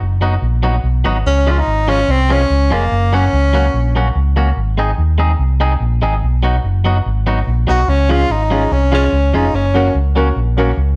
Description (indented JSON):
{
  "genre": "ska",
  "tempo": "145 BPM",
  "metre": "4/4",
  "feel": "straight",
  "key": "Db major",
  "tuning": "A4 = 441 Hz",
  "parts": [
    { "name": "fingered electric bass", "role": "bass", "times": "0.0-11.0 s", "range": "F1 to Eb2", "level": "-17 LUFS", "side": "equal", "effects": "none" },
    { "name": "clean electric guitar", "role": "accompaniment", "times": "0.2-10.7 s", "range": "F3 to Ab4", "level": "-23 LUFS", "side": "equal", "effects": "slapback echo" },
    { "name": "clear tenor saxophone", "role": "melody", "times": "1.3-4.0, 7.7-10.0 s", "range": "Bb3 to Gb4", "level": "-19 LUFS", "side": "equal", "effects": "slapback echo" },
    { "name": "warm upright piano", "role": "stabs", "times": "8.1-10.7 s", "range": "Db4 to Bb4", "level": "-22 LUFS", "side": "equal", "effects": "none" }
  ],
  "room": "light reverb, small room ambience",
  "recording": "nothing above 10.5 kHz",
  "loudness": "-15 LUFS",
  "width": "mono",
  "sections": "0.0-11.0 A section",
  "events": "none",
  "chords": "0.0 Cb; 1.2 Db; 2.9 Gb; 4.6 Ab; 6.2 Cb; 7.9 Db; 9.5 Gb"
}